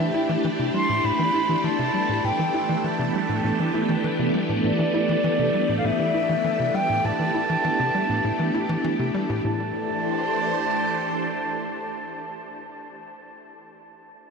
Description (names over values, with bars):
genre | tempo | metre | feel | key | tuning
ambient | 100 BPM | 4/4 | straight | A minor | A4 = 440 Hz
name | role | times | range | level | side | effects
mellow concert flute | melody | 0.0-12.6 s | D5 to C6 | -26 LUFS | right 1 dB | ping-pong delay
phased string machine | sustained chords | 0.0-12.6 s | E3 to C5 | -25 LUFS | equal | ensemble chorus, phaser
tight sequencer bass | riff | 0.0-9.7 s | A2 to E4 | -27 LUFS | equal | analog chorus, ping-pong delay
room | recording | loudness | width
wet huge ambient reverb, RT60 8.5 s | none | -21 LUFS | side -5 dB against mid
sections
0.0-9.4 A section; 9.4-11.8 B section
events
none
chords
0.0 Am